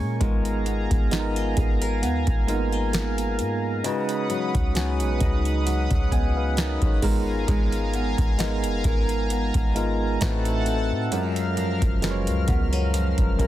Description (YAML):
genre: contemporary R&B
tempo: 66 BPM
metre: 4/4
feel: swing 54% on 16ths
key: G# dorian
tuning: A4 = 438 Hz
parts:
  - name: tine electric piano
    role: accompaniment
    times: 0.0-13.5 s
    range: F#3 to G#5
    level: -28 LUFS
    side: right 1 dB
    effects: slow stereo tremolo
  - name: chorused pulse-width pad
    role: sustained chords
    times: 0.0-13.5 s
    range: A4 to E#6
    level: -32 LUFS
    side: equal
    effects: sidechain pumping
  - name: flamenco guitar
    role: arpeggios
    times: 0.0-13.5 s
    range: F#2 to A#4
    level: -30 LUFS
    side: left 2 dB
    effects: none
  - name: clean 808-style bass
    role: bass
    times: 0.0-13.5 s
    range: F#1 to A#2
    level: -26 LUFS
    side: equal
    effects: none
  - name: booming analog drum machine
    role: drums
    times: 0.2-13.5 s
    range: hi-hat, kick drum, snare drum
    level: -25 LUFS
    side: equal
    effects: none
room: little or no reverb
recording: dense, heavily limited modern master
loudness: -21 LUFS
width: side -13 dB against mid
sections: 0.0-13.5 A section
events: none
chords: 0.2 G#m69; 3.8 C#9sus4; 7.0 G#m69; 10.2 Adim7; 11.1 F#maj7